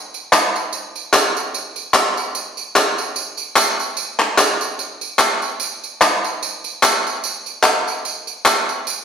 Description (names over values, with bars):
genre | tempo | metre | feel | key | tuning
gospel | 148 BPM | 4/4 | swing 56% on 8ths | none | none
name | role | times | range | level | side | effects
tambourine and handclaps | percussion | 0.1-9.0 s | none | -16 LUFS | equal | none
room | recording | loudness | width
wet recital hall reverb, RT60 1.3 s | recorded in a church or concert hall | -16 LUFS | side -7 dB against mid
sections
0.0-9.0 A section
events
none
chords
none